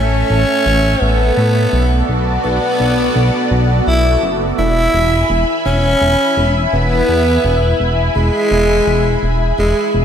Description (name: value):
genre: synthwave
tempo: 84 BPM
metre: 4/4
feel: straight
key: unclear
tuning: A4 = 440 Hz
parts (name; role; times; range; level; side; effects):
- growling tenor saxophone; melody; 0.0-10.0 s; G#3 to E4; -16 LUFS; equal; slapback echo, tape echo
- lush unison pad; sustained chords; 0.0-10.0 s; A3 to B5; -18 LUFS; equal; chorus, phaser, vintage 12-bit sampler grit
- chorused synth bass; bass; 0.0-10.0 s; E1 to A2; -15 LUFS; equal; none
room: moderate lush hall reverb, RT60 2.0 s, studio reverb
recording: big arena sound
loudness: -12 LUFS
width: side -8 dB against mid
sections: 0.0-10.0 A section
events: none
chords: 0.0 A; 1.7 Bm7; 4.6 E